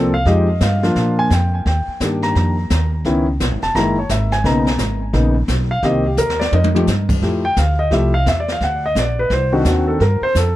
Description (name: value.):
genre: jazz piano trio.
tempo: 172 BPM.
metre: 4/4.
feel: swing 63% on 8ths.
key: F major from 7.2 s.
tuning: A4 = 441 Hz.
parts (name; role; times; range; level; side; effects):
warm concert grand piano; melody; 0.0-10.6 s; C#3 to Bb5; -18 LUFS; left 1 dB; tape echo.
upright bass; bass; 0.0-10.6 s; Fb1 to Bb2; -18 LUFS; equal; none.
jazz brush drum kit; drums; 0.3-10.6 s; brushed snare drum, crash cymbal, hi-hat, kick drum, snare drum, toms; -23 LUFS; equal; none.
room: light reverb.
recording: none.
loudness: -14 LUFS.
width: side -14 dB against mid.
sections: 0.0-7.2 A section; 7.2-10.6 B section.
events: drum fill 6.2-6.9; grand piano solo 7.2-10.6.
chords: 0.3 Fm9; 1.0 Bb; 1.7 Ebmaj7; 3.0 Dbm9; 3.7 Gb13; 4.4 Bmaj9; 5.8 Cm7; 6.5 F7sus2; 7.2 Fmaj9; 8.6 D7b9; 10.0 Gm9.